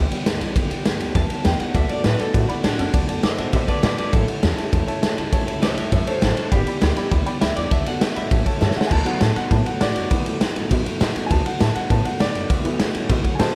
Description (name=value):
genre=rockabilly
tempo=201 BPM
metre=4/4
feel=straight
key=D major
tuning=A4 = 440 Hz
part: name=electric guitar through a small old amp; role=melody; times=0.0-8.9 s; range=D4 to B5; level=-30 LUFS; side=equal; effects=subtle chorus, tape echo
part: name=picked steel-string acoustic guitar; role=accompaniment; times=0.0-13.5 s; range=G2 to G4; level=-31 LUFS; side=equal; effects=none
part: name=upright bass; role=bass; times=0.0-13.5 s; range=G1 to B2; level=-26 LUFS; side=equal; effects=none
part: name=raw garage drum kit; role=drums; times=0.1-13.5 s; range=crash cymbal, kick drum, ride cymbal, snare drum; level=-23 LUFS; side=equal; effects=none
part: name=warm upright piano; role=accompaniment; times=1.7-13.6 s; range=E3 to D6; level=-30 LUFS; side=equal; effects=none
room=light reverb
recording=none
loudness=-21 LUFS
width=mono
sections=0.0-8.9 A section; 8.9-13.6 B section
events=drum fill 8.6; upright piano solo 8.9-13.6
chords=0.0 G6; 1.7 D6; 4.1 A6; 6.5 G6; 7.7 D6; 8.3 A6; 8.9 D6